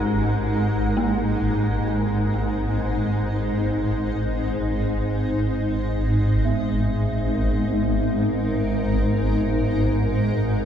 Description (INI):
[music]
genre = dark ambient drone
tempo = free time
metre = none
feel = none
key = G# harmonic minor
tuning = A4 = 441 Hz
[part]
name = granular cloud pad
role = sustained chords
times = 0.0-10.7 s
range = G#3 to A#4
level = -24 LUFS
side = equal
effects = built-in reverb, shimmer reverb
[part]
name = dark detuned synth bell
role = arpeggios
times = 0.0-10.7 s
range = A#3 to A#4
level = -34 LUFS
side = left 1 dB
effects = none
[part]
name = swarming drone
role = drone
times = 0.0-10.7 s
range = G#1 to G#2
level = -22 LUFS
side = equal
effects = built-in reverb
[part]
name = bronze singing bowl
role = texture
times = 6.4-10.7 s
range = B3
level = -32 LUFS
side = right 2 dB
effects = shimmer reverb
[sound]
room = wet huge ambient reverb, RT60 8.4 s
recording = dark, warm production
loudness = -20 LUFS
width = side -9 dB against mid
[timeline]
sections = 0.0-6.4 A section; 6.4-10.7 B section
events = none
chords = 0.0 G#5; 6.4 G#m